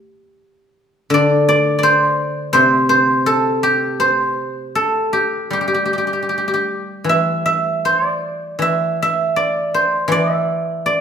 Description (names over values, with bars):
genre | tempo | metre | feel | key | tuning
chinese traditional, Chinese solo plucked strings | 80 BPM | 4/4 | uneven beats, rubato | G zhi mode | A4 = 440 Hz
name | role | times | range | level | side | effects
guzheng | solo | 0.0-11.0 s | C3 to E5 | -14 LUFS | equal | none
room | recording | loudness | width
moderate recital hall reverb, RT60 1.4 s | minimal, uncompressed stereo recording | -15 LUFS | side -7 dB against mid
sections
0.0-11.0 A section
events
none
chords
none